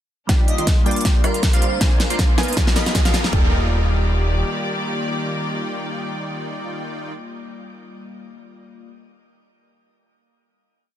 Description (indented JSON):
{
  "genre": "future bass",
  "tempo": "158 BPM",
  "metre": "4/4",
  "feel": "swing 55% on 16ths, half-time",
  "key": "Eb major",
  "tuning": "A4 = 440 Hz",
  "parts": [
    { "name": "glassy digital keys", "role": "accompaniment", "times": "0.3-8.9 s", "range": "G3 to D5", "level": "-31 LUFS", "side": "left 2 dB", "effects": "chorus, sidechain pumping, ping-pong delay" },
    { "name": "warm chamber string section", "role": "sustained chords", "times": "0.3-7.1 s", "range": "D3 to D5", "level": "-29 LUFS", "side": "left 1 dB", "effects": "sidechain pumping, low-pass filter" },
    { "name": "wide unison pluck", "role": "arpeggios", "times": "0.3-7.8 s", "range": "F5 to C6", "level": "-35 LUFS", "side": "equal", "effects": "none" },
    { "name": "supersaw stab", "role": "riff", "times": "0.3-7.1 s", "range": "Eb3 to C6", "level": "-28 LUFS", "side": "right 1 dB", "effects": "sidechain pumping, low-pass filter, ping-pong delay" },
    { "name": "fat analog bass", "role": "bass", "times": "0.3-4.4 s", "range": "Eb1 to Cb2", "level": "-23 LUFS", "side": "equal", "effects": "sidechain pumping, high-pass filter" },
    { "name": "big-room dance drum kit", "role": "drums", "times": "0.3-3.3 s", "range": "hi-hat, rim click, snare drum", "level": "-24 LUFS", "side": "equal", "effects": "none" },
    { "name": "electronic kick drum", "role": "drums", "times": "0.3-3.4 s", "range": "none", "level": "-18 LUFS", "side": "equal", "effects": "none" },
    { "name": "riser", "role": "sound effects", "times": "1.6-3.3 s", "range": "none", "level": "-33 LUFS", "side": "right 2 dB", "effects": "none" },
    { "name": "airy dreamy lead", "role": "melody", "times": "0.5-2.9 s", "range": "Bb4 to Eb5", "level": "-30 LUFS", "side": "right 1 dB", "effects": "chorus, sidechain pumping" }
  ],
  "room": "light reverb, digital ambience",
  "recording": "dense, heavily limited modern master",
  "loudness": "-17 LUFS",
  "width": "side -12 dB against mid",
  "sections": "0.3-3.3 build; 3.3-6.4 final chord",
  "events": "build-up 0.3-3.3; drum fill 0.3-3.3; filter sweep on supersaw synth 0.3-3.3; riser 1.6-3.3",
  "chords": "0.3 Ebmaj7; 0.9 Gm7; 1.8 Bb7; 2.4 Abm6/Cb; 3.3 Ebmaj7"
}